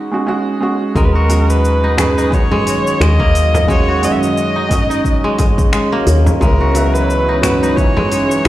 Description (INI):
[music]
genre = organic downtempo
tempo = 88 BPM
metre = 4/4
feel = swing 57% on 16ths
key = unclear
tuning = A4 = 439 Hz
[part]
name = felt-muted upright piano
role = accompaniment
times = 0.0-8.5 s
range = E3 to G#4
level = -20 LUFS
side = right 2 dB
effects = sidechain pumping, digital delay
[part]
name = kora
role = arpeggios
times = 0.0-8.5 s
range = G#3 to F#4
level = -20 LUFS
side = equal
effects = digital delay
[part]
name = rich kamancheh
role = melody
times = 1.0-8.5 s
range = A#4 to E5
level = -19 LUFS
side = equal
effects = tape echo
[part]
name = warm analog pad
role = sustained chords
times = 1.0-8.5 s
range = D#3 to C#5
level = -21 LUFS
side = equal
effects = chorus, sidechain pumping
[part]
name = woody FM bass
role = bass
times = 1.0-8.5 s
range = C#2 to F#2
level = -15 LUFS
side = equal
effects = tube saturation, sidechain pumping
[part]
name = deep house drum kit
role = drums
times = 1.0-8.5 s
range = finger snaps, hi-hat, shaker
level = -24 LUFS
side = left 1 dB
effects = overdrive
[part]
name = electronic kick drum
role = drums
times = 1.0-7.9 s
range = none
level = -16 LUFS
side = equal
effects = none
[part]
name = frame drum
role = percussion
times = 2.0-8.1 s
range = none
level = -21 LUFS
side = equal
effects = none
[sound]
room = light reverb, studio reverb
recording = played on a big sound system in a bare room, large studio reverb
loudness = -11 LUFS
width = side -14 dB against mid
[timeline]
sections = 1.0-8.5 A section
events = break 0.0-1.0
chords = 0.0 Emaj7 (rootless); 1.0 D#m7; 6.4 C#m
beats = 0.27 | 0.95 1.64 2.32 3.00 | 3.68 4.36 5.05 5.73 | 6.41 7.09 7.77 8.46